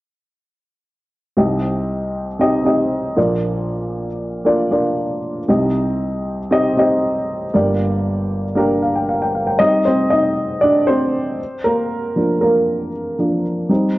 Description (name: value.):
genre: pop.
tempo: 117 BPM.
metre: 4/4.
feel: straight.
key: C minor.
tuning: A4 = 440 Hz.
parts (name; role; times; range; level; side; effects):
dark upright piano; accompaniment; 1.4-14.0 s; G1 to G5; -16 LUFS; equal; cassette tape.
room: wet spring reverb, RT60 1.7 s, small room ambience.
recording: home recording on cassette.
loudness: -16 LUFS.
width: side -17 dB against mid.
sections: 1.4-9.6 A section; 9.6-14.0 B section.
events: upright piano solo 9.6-14.0.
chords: 1.4 Cm; 3.2 Bb; 5.5 Cm; 7.5 Gm; 9.6 Cm; 11.4 Bb.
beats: | 1.37 1.89 2.40 2.91 | 3.43 3.94 4.45 4.97 | 5.48 5.99 6.51 7.02 | 7.53 8.05 8.56 9.07 | 9.59 10.10 10.61 11.13 | 11.64 12.15 12.67 13.18 | 13.69.